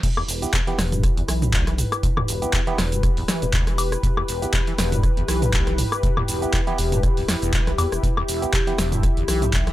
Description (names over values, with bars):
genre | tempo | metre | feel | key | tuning
acid house | 120 BPM | 4/4 | swing 55% on 16ths | E minor pentatonic | A4 = 440 Hz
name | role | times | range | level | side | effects
warm analog pad | sustained chords | 0.0-9.7 s | E4 to E5 | -28 LUFS | left 2 dB | chorus, vintage 12-bit sampler grit, sidechain pumping
acid bass, saw | riff | 0.0-9.7 s | E1 to E3 | -28 LUFS | equal | overdrive, lush chorus, sidechain pumping, digital delay
saturated sub bass | bass | 0.0-9.7 s | D1 to E2 | -26 LUFS | equal | sidechain pumping
electronic kick drum | drums | 0.0-9.6 s | none | -23 LUFS | equal | none
punchy analog drum machine | drums | 0.0-9.7 s | crash cymbal, handclaps, hi-hat, rim click, shaker, snare drum, toms, woodblock | -24 LUFS | equal | none
barky tine electric piano | stabs | 0.4-8.8 s | B3 to G4 | -30 LUFS | right 4 dB | overdrive, digital delay
vibraphone with medium mallets | melody | 8.5-8.7 s | G4 | -32 LUFS | right 3 dB | digital delay
room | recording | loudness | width
light reverb | none | -19 LUFS | side -15 dB against mid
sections
0.0-9.7 A section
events
drop 0.0-9.7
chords
0.0 Em